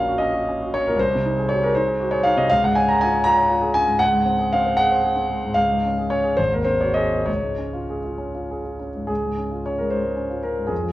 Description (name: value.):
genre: classical, romantic character piece for solo piano.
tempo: 63-81 BPM (dotted quarters).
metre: 6/8.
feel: rubato.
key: Db major.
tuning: A4 = 443 Hz.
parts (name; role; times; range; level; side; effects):
warm concert grand piano; solo; 0.0-10.9 s; Ab1 to Bb5; -18 LUFS; equal; none.
room: moderate recital hall reverb, RT60 1.7 s.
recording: worn, warbling old tape, cassette tape, warbly pitch drift.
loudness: -18 LUFS.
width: side -15 dB against mid.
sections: 0.0-9.1 A section; 9.1-10.9 B section.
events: none.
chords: 0.0 Gb/Bb; 1.0 Ab7/C; 2.5 Db; 4.0 Ab7/Db; 5.6 Db; 6.4 Ab7; 7.3 Db.